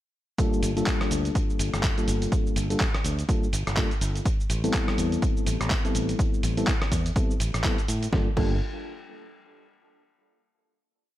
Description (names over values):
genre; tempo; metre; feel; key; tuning
deep house; 124 BPM; 4/4; swing 58% on 16ths; G dorian; A4 = 438 Hz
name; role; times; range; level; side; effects
mellow FM electric piano; stabs; 0.4-8.6 s; G3 to A4; -29 LUFS; left 1 dB; chorus, sidechain pumping, tape echo
dusty soul sampler-style drum kit; drums; 0.4-8.5 s; cabasa, crash cymbal, handclaps, hi-hat, rim click, snare drum; -31 LUFS; equal; none
electronic kick drum; drums; 0.4-8.5 s; none; -26 LUFS; equal; none
fingered electric bass; bass; 0.6-8.6 s; G1 to A2; -28 LUFS; equal; sidechain pumping
room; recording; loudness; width
little or no reverb; none; -23 LUFS; side -14 dB against mid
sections
0.4-8.1 drop; 8.1-10.1 final chord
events
drop 0.4-8.1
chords
0.4 Gm9; 4.3 Am9; 8.1 Gm9